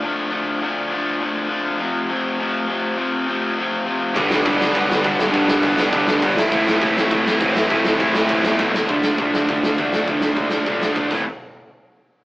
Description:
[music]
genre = punk rock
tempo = 203 BPM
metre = 4/4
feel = straight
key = unclear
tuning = A4 = 440 Hz
[part]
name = distorted electric guitar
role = riff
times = 0.0-11.2 s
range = F2 to E4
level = -21 LUFS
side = left 1 dB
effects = distortion
[part]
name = cranked stack guitar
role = riff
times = 4.1-8.7 s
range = G2 to E4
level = -20 LUFS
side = equal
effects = overdrive
[part]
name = distorted electric guitar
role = riff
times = 4.2-11.2 s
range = G2 to D4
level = -21 LUFS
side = right 1 dB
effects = distortion
[part]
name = growling picked electric bass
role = bass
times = 4.2-11.3 s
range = F1 to A2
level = -29 LUFS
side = equal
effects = none
[part]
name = big rock drum kit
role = drums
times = 4.2-11.2 s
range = crash cymbal, hi-hat, kick drum, snare drum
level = -22 LUFS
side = equal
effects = none
[sound]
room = light reverb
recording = rough rehearsal-room recording, tube saturation, AM radio sound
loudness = -17 LUFS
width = side -19 dB against mid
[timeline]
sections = 0.0-8.9 A section; 8.9-11.3 B section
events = drum fill 8.6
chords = 0.0 Dm; 1.8 F; 4.2 G; 6.4 Am; 8.9 Dm; 11.1 Am; 11.3 N.C.

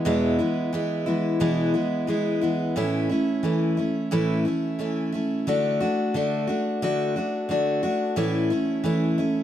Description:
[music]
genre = country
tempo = 89 BPM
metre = 4/4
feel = straight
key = A major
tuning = A4 = 439 Hz
[part]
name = picked steel-string acoustic guitar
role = solo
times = 0.0-9.4 s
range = E2 to F#4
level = -22 LUFS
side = equal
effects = none
[sound]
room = light reverb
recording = dark, warm production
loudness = -22 LUFS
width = side -11 dB against mid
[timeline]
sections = 0.0-9.4 A section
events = none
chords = 0.0 E; 2.8 A; 5.5 D; 8.2 A

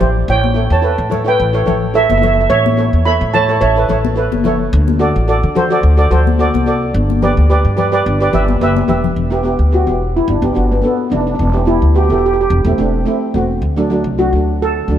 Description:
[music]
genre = calypso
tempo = 108 BPM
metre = 4/4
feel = swing 54% on 16ths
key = G major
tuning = A4 = 440 Hz
[part]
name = steel pan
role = accompaniment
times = 0.0-15.0 s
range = F#3 to E5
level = -17 LUFS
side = right 2 dB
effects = none
[part]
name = upright bass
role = bass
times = 0.0-15.0 s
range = E1 to D3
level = -15 LUFS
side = equal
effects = none
[part]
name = congas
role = percussion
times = 0.0-9.2 s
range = none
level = -20 LUFS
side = left 7 dB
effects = none
[part]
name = steel pan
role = melody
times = 0.3-4.4, 9.7-15.0 s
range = B3 to B5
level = -16 LUFS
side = right 2 dB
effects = none
[sound]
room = moderate plate reverb, RT60 3.6 s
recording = heard from further back in the room, faint mains hum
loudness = -11 LUFS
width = side -10 dB against mid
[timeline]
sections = 0.0-9.2 A section; 9.2-15.0 B section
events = drum fill 8.5-9.2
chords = 0.3 A; 4.7 D; 6.9 G6; 9.2 Em; 10.3 G; 11.4 Em; 12.5 Am/E; 13.6 D

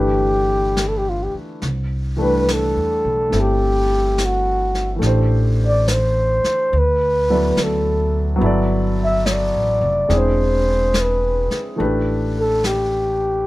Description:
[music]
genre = jazz ballad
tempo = 70 BPM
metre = 4/4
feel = swing 68% on 8ths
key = G major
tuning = A4 = 440 Hz
[part]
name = breathy flugelhorn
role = melody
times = 0.0-13.5 s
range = F4 to E5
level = -18 LUFS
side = equal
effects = none
[part]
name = warm grand piano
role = accompaniment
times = 0.0-13.5 s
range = E3 to D5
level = -23 LUFS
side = equal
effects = none
[part]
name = upright bass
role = bass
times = 0.0-13.5 s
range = E1 to E2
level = -20 LUFS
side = equal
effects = none
[part]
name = vintage brush drum kit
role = drums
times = 0.8-13.5 s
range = brushed snare drum, hi-hat, snare drum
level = -28 LUFS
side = left 1 dB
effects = none
[sound]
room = little or no reverb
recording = close, detailed microphones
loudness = -16 LUFS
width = side -18 dB against mid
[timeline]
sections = 0.0-13.5 A section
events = none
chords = 0.0 G; 1.6 C6; 5.0 Am7; 6.7 D69; 8.4 Gmaj9; 10.1 E7b13; 11.8 A5

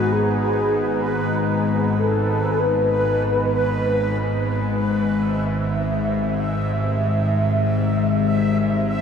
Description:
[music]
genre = dark ambient drone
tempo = 48 BPM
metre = 4/4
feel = straight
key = unclear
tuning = A4 = 440 Hz
[part]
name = mellow horn-like synth lead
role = melody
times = 0.0-4.5 s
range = F#4 to B4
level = -24 LUFS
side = left 1 dB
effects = lush chorus, ping-pong delay
[part]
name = deep dark ambient pad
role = sustained chords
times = 0.0-9.0 s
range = B3 to G#5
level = -28 LUFS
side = equal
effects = chorus, built-in reverb
[part]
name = bowed-like drone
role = drone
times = 0.0-9.0 s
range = G#1 to G#2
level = -20 LUFS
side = left 1 dB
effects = built-in reverb
[part]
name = bubbling stepped-filter texture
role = texture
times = 0.0-9.0 s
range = B4 to E5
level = -27 LUFS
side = right 2 dB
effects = chorus, built-in reverb
[sound]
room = wet cathedral reverb, RT60 6.7 s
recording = none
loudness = -18 LUFS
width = side -7 dB against mid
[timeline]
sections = 0.0-9.0 A section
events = none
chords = 0.0 G#m; 5.1 C

